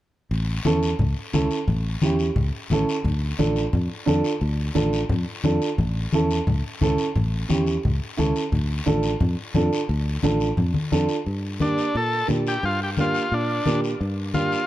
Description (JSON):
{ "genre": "latin, cumbia", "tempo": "175 BPM", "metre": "4/4", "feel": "straight", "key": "D harmonic minor", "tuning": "A4 = 441 Hz", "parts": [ { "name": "fingered electric bass", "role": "bass", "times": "0.3-14.6 s", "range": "A1 to Bb2", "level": "-24 LUFS", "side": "equal", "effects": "none" }, { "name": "guiro", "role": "percussion", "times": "0.3-14.7 s", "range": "none", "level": "-36 LUFS", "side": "left 5 dB", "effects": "none" }, { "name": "congas", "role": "percussion", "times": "0.6-14.5 s", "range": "none", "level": "-25 LUFS", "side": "left 2 dB", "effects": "none" }, { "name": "dark upright piano", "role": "accompaniment", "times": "0.7-14.6 s", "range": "Bb3 to A4", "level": "-25 LUFS", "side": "right 3 dB", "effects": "none" }, { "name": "combo organ", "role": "melody", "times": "11.6-14.7 s", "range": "D4 to A4", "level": "-24 LUFS", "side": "equal", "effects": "none" } ], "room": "little or no reverb", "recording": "dark, warm production", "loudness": "-20 LUFS", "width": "side -14 dB against mid", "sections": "0.3-11.3 A section; 11.3-14.7 B section", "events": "none", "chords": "0.3 A; 3.0 Dm; 5.8 A; 8.5 Dm; 11.3 Gm7" }